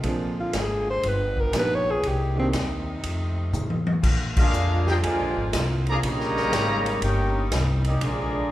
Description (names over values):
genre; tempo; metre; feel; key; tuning
jazz, big band swing; 120 BPM; 4/4; swing 67% on 8ths; unclear; A4 = 440 Hz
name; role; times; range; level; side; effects
clear concert grand piano; accompaniment; 0.0-2.5 s; Eb3 to Ab4; -31 LUFS; right 2 dB; none
clear saxophone section; sustained chords; 0.0-8.5 s; C3 to Ab4; -33 LUFS; equal; none
upright bass; bass; 0.0-8.5 s; G1 to Bb2; -26 LUFS; equal; none
swinging big-band drum kit; drums; 0.0-8.2 s; crash cymbal, hi-hat, kick drum, ride cymbal, snare drum, toms; -27 LUFS; equal; none
warm alto saxophone; melody; 0.4-2.5 s; C4 to Db5; -26 LUFS; equal; none
dark trumpet section; melody; 4.4-8.5 s; Bb3 to Bb5; -27 LUFS; left 1 dB; none
dark trombone section; second line; 4.4-8.5 s; Db3 to G4; -30 LUFS; right 1 dB; none
room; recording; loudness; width
wet recital hall reverb, RT60 1.9 s; recorded in a church or concert hall; -21 LUFS; side -14 dB against mid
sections
0.0-4.0 A section; 4.0-8.5 B section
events
alto saxophone solo 0.0-4.0; drum fill 3.5-4.0; band accent 4.3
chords
0.0 Bb7; 1.0 G7alt; 2.0 Cm7; 3.0 F7; 4.0 Bb7; 6.0 Eb7